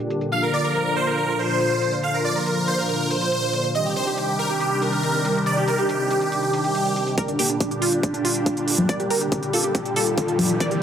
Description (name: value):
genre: uplifting trance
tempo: 140 BPM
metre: 4/4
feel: straight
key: G minor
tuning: A4 = 440 Hz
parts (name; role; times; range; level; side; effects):
- filtered supersaw swell; sustained chords; 0.0-10.8 s; Bb2 to G4; -25 LUFS; equal; phaser, sidechain pumping, low-pass filter
- electronic hi-hat and congas; drums; 0.0-10.8 s; none; -26 LUFS; equal; low-pass filter on hats, low-pass filter on cymbals, low-pass filter on perc
- supersaw chords; melody; 0.3-10.8 s; Bb3 to F5; -22 LUFS; equal; phaser, sidechain pumping, low-pass filter
- wide unison pluck; second line; 7.2-10.8 s; D4 to D5; -27 LUFS; right 2 dB; phaser, sidechain pumping, digital delay
- electronic kick drum; drums; 7.2-10.7 s; none; -26 LUFS; equal; high-pass filter on kick
- riser; sound effects; 8.6-10.8 s; none; -33 LUFS; equal; none
room: moderate concert hall reverb, RT60 2.5 s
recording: none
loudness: -20 LUFS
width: side -8 dB against mid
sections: 0.0-7.2 A section; 7.2-10.8 B section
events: filter sweep on supersaw synth 0.0-7.2; build-up 7.2-10.8; filter sweep on synth pluck 7.2-10.8; riser 8.6-10.8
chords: 0.3 Bb; 3.7 Cmadd9; 7.2 Gm